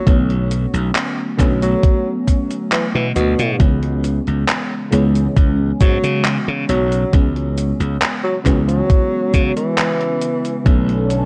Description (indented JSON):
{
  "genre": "vaporwave",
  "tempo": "68 BPM",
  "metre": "4/4",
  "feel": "straight",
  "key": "unclear",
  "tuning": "A4 = 442 Hz",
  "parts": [
    { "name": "breathy tenor saxophone", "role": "melody", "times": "0.0-10.8 s", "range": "B2 to F#3", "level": "-24 LUFS", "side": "equal", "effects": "tape echo" },
    { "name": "FM electric piano with soft pad layer", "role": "accompaniment", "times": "0.0-11.3 s", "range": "C#3 to C#4", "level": "-23 LUFS", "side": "equal", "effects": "phaser, subtle chorus" },
    { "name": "glassy slap bass", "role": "bass", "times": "0.1-11.2 s", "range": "B1 to C#3", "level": "-21 LUFS", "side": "equal", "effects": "tube saturation" },
    { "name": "electronic kick drum", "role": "drums", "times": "0.1-10.8 s", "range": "none", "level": "-16 LUFS", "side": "equal", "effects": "none" },
    { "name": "gated 80s digital drum machine", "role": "drums", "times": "0.1-11.3 s", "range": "cabasa, handclaps, hi-hat", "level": "-25 LUFS", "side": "equal", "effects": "gated reverb" },
    { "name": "lush unison pad", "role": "sustained chords", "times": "10.7-11.3 s", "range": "D3 to A4", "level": "-25 LUFS", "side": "equal", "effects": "chorus, phaser" }
  ],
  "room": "light reverb, digital ambience",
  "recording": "cassette tape",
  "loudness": "-17 LUFS",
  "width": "mono",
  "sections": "0.0-11.3 A section",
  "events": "none",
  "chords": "0.0 Bm9; 3.6 C#m7; 10.7 Bm9"
}